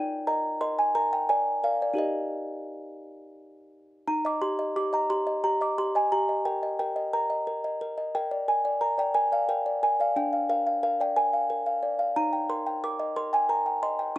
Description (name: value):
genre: classical, lullaby for music box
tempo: 59 BPM (dotted quarters)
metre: 6/8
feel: straight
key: Eb major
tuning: A4 = 439 Hz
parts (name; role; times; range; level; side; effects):
- music box; solo; 0.0-14.2 s; D4 to D6; -24 LUFS; equal; none
room: moderate studio reverb, RT60 0.7 s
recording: none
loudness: -24 LUFS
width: side -15 dB against mid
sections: 0.0-4.1 A section; 4.1-14.2 B section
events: none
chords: 0.0 Eb5; 1.0 Bb; 2.0 Eb; 6.1 Eb/G; 8.1 Bb; 10.2 Bb/D; 12.2 Eb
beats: 0.95 | 1.99 3.04 | 4.08 5.11 | 6.12 7.14 | 8.15 9.15 | 10.16 11.16 | 12.16 13.16 | 14.16